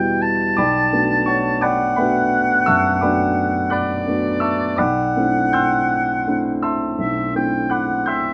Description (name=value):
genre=classical, impressionist duo for oboe and grand piano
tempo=57 BPM (dotted quarters)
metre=12/8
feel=rubato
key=unclear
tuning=A4 = 444 Hz
part: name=warm oboe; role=melody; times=0.0-8.3 s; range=D5 to A5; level=-22 LUFS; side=equal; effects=none
part: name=dark baby grand piano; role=accompaniment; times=0.0-8.3 s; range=B1 to G6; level=-21 LUFS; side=equal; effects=none
room=light reverb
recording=none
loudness=-19 LUFS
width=mono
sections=0.0-8.3 A section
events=none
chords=0.0 Emadd9; 0.6 Bm7; 4.8 D9sus4/B